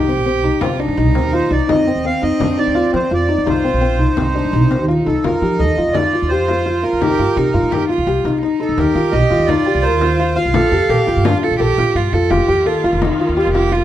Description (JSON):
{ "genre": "contemporary instrumental, chamber music in an uneven meter", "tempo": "169 BPM", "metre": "5/4", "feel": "straight", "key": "unclear", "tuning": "A4 = 438 Hz", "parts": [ { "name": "dark cello", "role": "second line", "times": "0.0-13.8 s", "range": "C4 to A4", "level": "-21 LUFS", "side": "right 6 dB", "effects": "none" }, { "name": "felt-muted upright piano", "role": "arpeggios", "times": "0.0-13.8 s", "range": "C4 to Bb4", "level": "-17 LUFS", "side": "left 3 dB", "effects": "none" }, { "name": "upright bass", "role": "bass", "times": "0.0-13.8 s", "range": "F1 to F3", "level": "-19 LUFS", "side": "right 1 dB", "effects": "none" }, { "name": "frame drum", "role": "percussion", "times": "0.6-13.7 s", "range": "none", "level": "-25 LUFS", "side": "left 5 dB", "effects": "none" }, { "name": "accordion", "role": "melody", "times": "1.2-11.4 s", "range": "A4 to F5", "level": "-20 LUFS", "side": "right 2 dB", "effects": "none" }, { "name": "muted studio string section", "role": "sustained chords", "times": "12.3-13.8 s", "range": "Eb3 to F4", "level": "-25 LUFS", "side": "equal", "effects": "none" } ], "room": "moderate recital hall reverb, RT60 1.5 s", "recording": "none", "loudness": "-13 LUFS", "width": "side -12 dB against mid", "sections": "0.0-5.2 A section; 5.2-13.8 B section", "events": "none", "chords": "0.0 Cm7; 1.7 F5; 3.5 Cm7; 5.2 F7sus4; 7.0 Cm7; 8.8 Eb69; 10.5 Bbmaj7(no3); 12.3 F7sus4" }